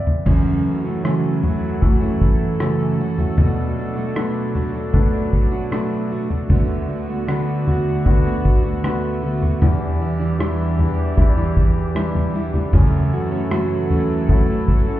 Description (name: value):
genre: pop ballad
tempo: 77 BPM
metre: 4/4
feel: straight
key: unclear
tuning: A4 = 439 Hz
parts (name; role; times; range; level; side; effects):
- bright concert grand piano; accompaniment; 0.0-15.0 s; E2 to G5; -23 LUFS; left 3 dB; none
- unplugged drum kit; drums; 0.1-14.9 s; crash cymbal, kick drum, rim click, toms; -18 LUFS; equal; none
- clear studio string section; sustained chords; 0.3-15.0 s; D2 to A4; -25 LUFS; equal; none
- picked plugged-in steel-string acoustic guitar; arpeggios; 0.3-15.0 s; E2 to F#4; -23 LUFS; right 4 dB; tape echo
room: light reverb, small room ambience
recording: heard muffled through a wall, club reverb, EQ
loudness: -16 LUFS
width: side -14 dB against mid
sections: 0.3-15.0 A section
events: grand piano fill 0.0; drum fill 0.0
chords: 0.3 F#m7; 3.4 Bm7; 6.5 D6; 9.6 Em7; 12.7 F#m7